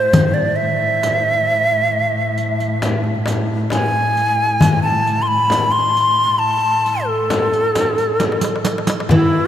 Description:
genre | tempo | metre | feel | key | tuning
Arabic maqam ensemble | 134 BPM (eighths) | 10/8 | straight | A maqam nahawand | A4 = 440 Hz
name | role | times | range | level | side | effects
breathy bright ney | melody | 0.0-9.5 s | E4 to C6 | -16 LUFS | equal | none
muted double bass | drone | 0.0-9.2 s | A2 | -23 LUFS | left 1 dB | none
darbuka | percussion | 0.1-9.3 s | none | -20 LUFS | left 2 dB | none
frame drum | percussion | 0.1-9.3 s | none | -24 LUFS | left 3 dB | none
riq | percussion | 0.1-9.1 s | none | -26 LUFS | right 4 dB | none
oud | second line | 9.1-9.5 s | E3 | -19 LUFS | right 4 dB | none
room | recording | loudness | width
wet huge ambient reverb, RT60 5.6 s | dreamy mix soaked in reverb | -14 LUFS | side -10 dB against mid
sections
0.0-9.1 A section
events
drum fill 8.2-9.1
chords
none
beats
| 0.14 0.59 1.03 1.48 1.93 2.38 2.83 3.27 3.72 4.17 | 4.62 5.07 5.51 5.96 6.41 6.86 7.31 7.75 8.20 8.65 | 9.10

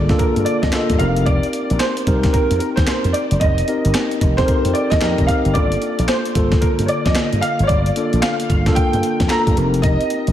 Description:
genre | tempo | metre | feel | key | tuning
R&B, new jack swing | 112 BPM | 4/4 | swing 63% on 16ths | G minor | A4 = 439 Hz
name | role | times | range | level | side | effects
warm concert grand piano | melody | 0.0-10.3 s | Bb4 to Bb5 | -22 LUFS | right 1 dB | ensemble chorus, tape echo
mellow tine electric piano | accompaniment | 0.0-10.3 s | D3 to Bb4 | -21 LUFS | left 1 dB | slow stereo tremolo
slap bass with an envelope filter | bass | 0.0-10.3 s | F1 to G2 | -19 LUFS | equal | none
breakbeat sampler-style drum kit | drums | 0.1-10.3 s | handclaps, hi-hat, kick drum, snare drum | -20 LUFS | equal | none
room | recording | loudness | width
moderate church reverb, RT60 2.6 s | dreamy mix soaked in reverb | -15 LUFS | side -11 dB against mid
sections
0.0-10.3 A section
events
none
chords
0.0 Gm7; 1.0 F9sus4; 5.6 Gm7; 9.6 F9sus4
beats
0.20 0.73 | 1.27 1.80 2.34 2.87 | 3.41 3.95 4.48 5.02 | 5.55 6.09 6.62 7.16 | 7.70 8.23 8.77 9.30 | 9.84

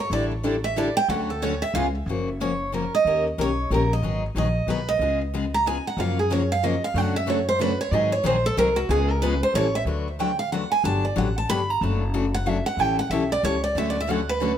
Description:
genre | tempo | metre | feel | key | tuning
acoustic string swing (jazz manouche) | 185 BPM | 3/4 | swing 59% on 8ths | F# major, D major from 9.9 s | A4 = 440 Hz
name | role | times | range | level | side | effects
picked steel-string acoustic guitar | melody | 0.0-14.6 s | F#4 to B5 | -24 LUFS | right 3 dB | plate reverb, tape echo
picked steel-string acoustic guitar | accompaniment | 0.1-14.5 s | C#3 to B4 | -27 LUFS | left 5 dB | none
picked steel-string acoustic guitar | accompaniment | 0.1-1.9, 6.0-9.7, 13.8-14.5 s | C#3 to C#5 | -31 LUFS | right 6 dB | none
upright bass | bass | 0.1-14.5 s | F#1 to G#2 | -27 LUFS | equal | none
room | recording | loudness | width
moderate studio reverb, RT60 0.6 s | none | -21 LUFS | side -9 dB against mid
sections
0.0-2.1 A section; 2.1-9.9 A section; 9.9-14.6 A section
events
steel-string acoustic guitar solo 0.0-2.1, 2.1-14.6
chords
0.1 A7sus4; 1.1 Dmaj7; 1.8 C#7; 2.1 F#maj7; 3.1 D#7; 4.0 G#m7; 5.0 C#7; 6.0 F#maj7; 7.0 Dmaj7/F#; 7.9 G#7; 8.9 C#7; 9.5 A7; 9.9 D6; 10.8 Gmaj7; 11.8 Dmaj7/F#; 12.8 A7; 13.8 Dmaj7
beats
| 0.12 0.45 0.77 | 1.10 1.42 1.75 | 2.08 2.40 2.73 | 3.05 3.38 3.71 | 4.03 4.36 4.68 | 5.00 5.33 5.66 | 5.98 6.30 6.63 | 6.95 7.28 7.60 | 7.92 8.25 8.57 | 8.90 9.22 9.55 | 9.87 10.19 10.52 | 10.84 11.17 11.49 | 11.81 12.14 12.46 | 12.79 13.11 13.44 | 13.76 14.08 14.40

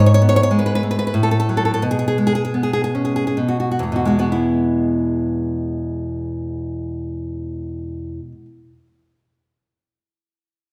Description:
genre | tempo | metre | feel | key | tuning
romantic piece for solo classical guitar | 61-100 BPM | 3/4 | rubato | E major | A4 = 440 Hz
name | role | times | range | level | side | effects
nylon-string guitar | solo | 0.0-8.7 s | E2 to C#5 | -19 LUFS | equal | none
room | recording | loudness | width
moderate recital hall reverb, RT60 1.4 s | recorded in a church or concert hall | -20 LUFS | mono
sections
0.0-4.3 A section; 4.3-9.8 B section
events
slowing down 0.0-4.3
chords
0.0 G#madd11; 1.1 F#m/A; 1.8 G#madd11/B; 3.4 F#madd11/B; 4.3 E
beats
0.51 1.14 | 1.82 2.54 3.37 | 4.31 5.21 6.11 | 7.01 7.92

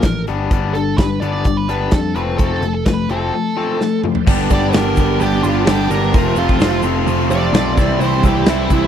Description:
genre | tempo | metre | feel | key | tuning
classic rock | 128 BPM | 4/4 | straight | G mixolydian | A4 = 440 Hz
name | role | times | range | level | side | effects
fuzz lead guitar | melody | 0.0-8.9 s | E4 to D5 | -22 LUFS | right 6 dB | wah, distortion, slapback echo
overdriven electric guitar | riff | 0.0-8.9 s | F2 to G4 | -19 LUFS | left 8 dB | none
overdriven picked electric bass | bass | 0.0-8.9 s | F1 to F2 | -21 LUFS | equal | none
big rock drum kit | drums | 0.0-8.8 s | crash cymbal, hi-hat, kick drum, snare drum, toms | -17 LUFS | equal | none
bright tonewheel organ | sustained chords | 4.0-8.9 s | G3 to F5 | -29 LUFS | right 5 dB | none
sludgy distorted guitar | riff | 4.3-8.9 s | F2 to G4 | -20 LUFS | right 17 dB | overdrive
egg shaker | percussion | 4.3-8.8 s | none | -40 LUFS | right 20 dB | none
room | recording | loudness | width
small room ambience | dry, close 1970s-style studio recording | -14 LUFS | side -9 dB against mid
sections
0.0-4.3 A section; 4.3-8.9 B section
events
drum fill 3.8-4.3; lead electric guitar solo 4.3-8.9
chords
0.3 G; 2.2 F; 4.3 G; 6.1 F; 7.8 C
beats
0.04 | 0.51 0.98 1.45 1.92 | 2.39 2.86 3.33 3.80 | 4.27 4.74 5.20 5.67 | 6.14 6.61 7.07 7.54 | 8.01 8.47

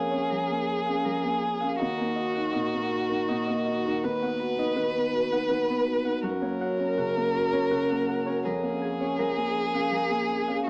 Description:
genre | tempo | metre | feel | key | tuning
neoclassical piano and strings | 81 BPM | 3/4 | rubato | unclear | A4 = 440 Hz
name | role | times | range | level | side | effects
rich violin | melody | 0.0-10.7 s | F#4 to B4 | -30 LUFS | equal | cassette tape, analog delay
felt-muted upright piano | accompaniment | 0.0-10.7 s | D#2 to G#4 | -32 LUFS | equal | plate reverb
hollow soft pad | sustained chords | 0.0-10.7 s | C#4 to B4 | -39 LUFS | equal | none
Celtic harp | arpeggios | 0.0-10.7 s | D#4 to B5 | -35 LUFS | equal | plate reverb, analog delay
room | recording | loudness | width
wet small room reverb, RT60 0.5 s | home recording on cassette, vinyl crackle, small speaker sound | -27 LUFS | mono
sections
0.0-10.7 A section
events
none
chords
0.0 A#m7/E#; 1.8 D#m; 4.0 B/D#; 6.2 F#; 8.5 A#m7/E#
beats
0.31 1.05 | 1.79 2.53 3.28 | 4.03 4.76 5.50 | 6.23 6.97 7.71 | 8.45 9.19 9.93 | 10.67

